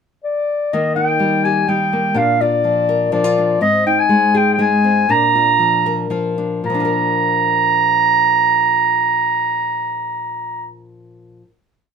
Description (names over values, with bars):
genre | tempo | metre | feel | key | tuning
acoustic folk duo or small band | 110-125 BPM | 3/4 | straight | Bb mixolydian | A4 = 440 Hz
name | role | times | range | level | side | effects
mellow clarinet | melody | 0.2-10.7 s | D5 to Bb5 | -15 LUFS | right 2 dB | none
nylon-string guitar | accompaniment | 0.7-11.5 s | Ab2 to Bb4 | -19 LUFS | left 3 dB | none
room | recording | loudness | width
light reverb | minimal, uncompressed stereo recording | -14 LUFS | side -6 dB against mid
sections
0.0-0.7 pickup bar; 0.7-6.7 A section; 6.7-9.9 final chord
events
slowing down 3.6-6.7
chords
0.0 N.C.; 0.7 Eb; 2.2 Bb; 3.6 Ab; 5.1 Bb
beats
0.24 | 0.72 1.20 1.68 | 2.17 2.65 3.13 | 3.61 4.10 4.59 | 5.08 5.59 6.11 | 6.65 7.20 7.74 | 8.29 8.83 9.38